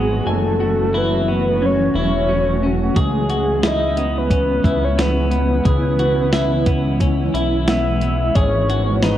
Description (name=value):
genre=dream pop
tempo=89 BPM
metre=4/4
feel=straight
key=C# minor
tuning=A4 = 441 Hz
part: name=soft octave-layered synth lead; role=melody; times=0.0-9.2 s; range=F#4 to E5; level=-21 LUFS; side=equal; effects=chorus, tape echo
part: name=granular cloud pad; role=sustained chords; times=0.0-9.2 s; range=E3 to F#4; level=-22 LUFS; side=right 1 dB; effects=built-in reverb
part: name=semi-hollow electric guitar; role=arpeggios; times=0.0-9.2 s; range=B3 to G#5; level=-24 LUFS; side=left 2 dB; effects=wide subtle chorus, tape echo
part: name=chorused synth bass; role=bass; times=0.0-9.2 s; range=E1 to C#2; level=-21 LUFS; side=equal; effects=none
part: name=clean 12-bit digital drum machine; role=drums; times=3.0-9.2 s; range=hi-hat, kick drum, snare drum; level=-19 LUFS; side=equal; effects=none
room=moderate scoring stage reverb, RT60 1.6 s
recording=worn, warbling old tape, cassette tape, warbly pitch drift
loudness=-15 LUFS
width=side -12 dB against mid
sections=0.0-9.2 A section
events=none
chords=0.3 F#m7; 3.0 C#m7; 8.3 G#m7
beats=| 0.26 0.94 1.61 2.28 | 2.96 3.63 4.30 4.98 | 5.65 6.33 7.00 7.68 | 8.35 9.03